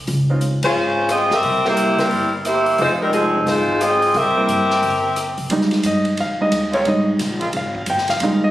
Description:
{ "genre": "jazz, big band swing", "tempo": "177 BPM", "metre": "4/4", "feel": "swing 64% on 8ths", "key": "F minor", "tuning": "A4 = 437 Hz", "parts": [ { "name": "upright bass", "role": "bass", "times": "0.0-8.5 s", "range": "F1 to G2", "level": "-25 LUFS", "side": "equal", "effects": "none" }, { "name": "swinging big-band drum kit", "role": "drums", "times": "0.1-8.3 s", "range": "crash cymbal, hi-hat, kick drum, ride cymbal, rim click, snare drum", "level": "-29 LUFS", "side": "equal", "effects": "none" }, { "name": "clear concert grand piano", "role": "accompaniment", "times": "0.3-8.5 s", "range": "F3 to G5", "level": "-19 LUFS", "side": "right 1 dB", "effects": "none" }, { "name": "warm saxophone section", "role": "melody", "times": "0.6-5.4 s", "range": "F3 to E5", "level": "-16 LUFS", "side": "equal", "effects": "none" }, { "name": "clear trombone section", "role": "sustained chords", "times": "6.7-8.5 s", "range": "Eb3 to F4", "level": "-29 LUFS", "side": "equal", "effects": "none" } ], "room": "moderate scoring stage reverb, RT60 1.9 s", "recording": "recorded on a phone in the room, studio reverb", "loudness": "-16 LUFS", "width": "side -14 dB against mid", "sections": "0.0-5.5 A section; 5.5-8.5 B section", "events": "band accent 0.6; grand piano solo 5.5-8.5", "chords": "0.1 Dbmaj7; 1.4 C7; 2.8 Fm7; 4.1 C7; 5.5 Fm7" }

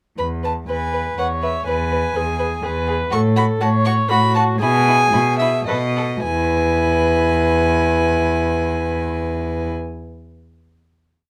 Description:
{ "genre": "quick classical-period movement for string quartet", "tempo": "103-124 BPM", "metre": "3/4", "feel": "rubato", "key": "E major", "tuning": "A4 = 440 Hz", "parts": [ { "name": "warm violin", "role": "melody", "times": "0.2-9.7 s", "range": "D#5 to C#6", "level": "-24 LUFS", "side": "equal", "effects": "none" }, { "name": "dark violin", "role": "second line", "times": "0.2-9.7 s", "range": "E4 to B4", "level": "-26 LUFS", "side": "equal", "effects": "none" }, { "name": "rich cello", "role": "bass", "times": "0.2-9.7 s", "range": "E2 to B2", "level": "-23 LUFS", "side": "equal", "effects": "none" }, { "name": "rich viola", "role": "accompaniment", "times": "0.7-9.7 s", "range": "E4 to C#5", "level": "-25 LUFS", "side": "equal", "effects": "none" } ], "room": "little or no reverb", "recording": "close, detailed microphones", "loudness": "-19 LUFS", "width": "mono", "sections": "0.2-6.2 A section; 6.2-9.6 final chord", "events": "slowing down 2.4-6.2", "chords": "0.2 E; 3.1 F#m/A; 4.6 E/B; 5.7 B7; 6.2 E" }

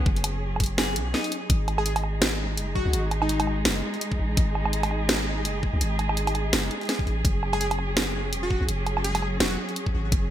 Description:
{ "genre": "half-time drum and bass", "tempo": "167 BPM", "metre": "4/4", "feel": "swing 58% on 16ths, half-time", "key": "unclear", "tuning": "A4 = 439 Hz", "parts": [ { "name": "dark symphonic cello section", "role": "sustained chords", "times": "0.0-10.3 s", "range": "F#3 to G#4", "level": "-31 LUFS", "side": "right 1 dB", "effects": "sidechain pumping" }, { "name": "clean electric guitar", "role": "arpeggios", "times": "0.0-1.3 s", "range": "D#4 to G#4", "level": "-34 LUFS", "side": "left 2 dB", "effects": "vintage 12-bit sampler grit, digital delay" }, { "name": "long sustained 808-style bass", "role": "bass", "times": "0.0-10.3 s", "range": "E1 to C#2", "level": "-28 LUFS", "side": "equal", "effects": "tube saturation" }, { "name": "electronic kick drum", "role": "drums", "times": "0.1-10.2 s", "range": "none", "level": "-25 LUFS", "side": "equal", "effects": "small room ambience" }, { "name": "drum and bass drum kit", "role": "drums", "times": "0.2-10.2 s", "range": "hi-hat, snare drum, woodblock", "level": "-26 LUFS", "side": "right 1 dB", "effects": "small room ambience, gated reverb" }, { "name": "plucky unison lead", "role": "melody", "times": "1.8-3.6, 7.5-9.6 s", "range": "D#4 to G#4", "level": "-32 LUFS", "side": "left 1 dB", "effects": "ping-pong delay" } ], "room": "light reverb", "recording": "bright 1980s-style digital production", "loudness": "-23 LUFS", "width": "side -11 dB against mid", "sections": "0.0-1.5 A section; 1.5-10.3 A section", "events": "drop 0.0-1.5, 1.5-10.3", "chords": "0.0 F#5; 1.5 G#5; 7.2 F#5" }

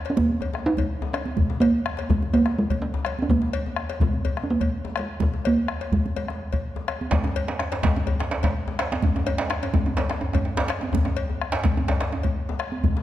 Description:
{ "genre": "west african traditional, West African drum ensemble", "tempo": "126 BPM", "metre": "4/4", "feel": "straight", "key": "unclear", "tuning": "A4 = 441 Hz", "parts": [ { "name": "talking drum", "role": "melody", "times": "0.0-6.9 s", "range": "Ab3 to Eb4", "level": "-24 LUFS", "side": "right 2 dB", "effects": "none" }, { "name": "djembe", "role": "percussion", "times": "0.0-13.0 s", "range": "none", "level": "-28 LUFS", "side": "left 3 dB", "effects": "none" }, { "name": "bombo", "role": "percussion", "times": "0.1-12.9 s", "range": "none", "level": "-27 LUFS", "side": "equal", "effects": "none" }, { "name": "cowbell", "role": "percussion", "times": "0.1-12.7 s", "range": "none", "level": "-35 LUFS", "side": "left 6 dB", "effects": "none" }, { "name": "congas", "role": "percussion", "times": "0.2-13.0 s", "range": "none", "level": "-32 LUFS", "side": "right 4 dB", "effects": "none" }, { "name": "djembe", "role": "percussion", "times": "7.1-12.2 s", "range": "none", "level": "-27 LUFS", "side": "right 3 dB", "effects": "none" } ], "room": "wet recital hall reverb, RT60 1.7 s", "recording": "dark, warm production", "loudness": "-22 LUFS", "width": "side -13 dB against mid", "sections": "0.0-7.1 A section; 7.1-13.0 B section", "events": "none", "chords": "none" }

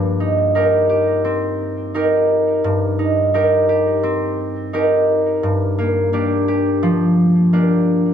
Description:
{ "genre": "folktronica", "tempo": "86 BPM", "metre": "4/4", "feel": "straight", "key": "unclear", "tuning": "A4 = 440 Hz", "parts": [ { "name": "concert harp", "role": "solo", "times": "0.0-8.1 s", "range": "G2 to Bb4", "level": "-14 LUFS", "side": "equal", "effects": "none" } ], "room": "moderate echo chamber reverb, RT60 2.1 s", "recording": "none", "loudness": "-15 LUFS", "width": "side -8 dB against mid", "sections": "0.0-8.1 A section", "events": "none", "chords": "0.0 Cm7/G; 5.4 Gm7" }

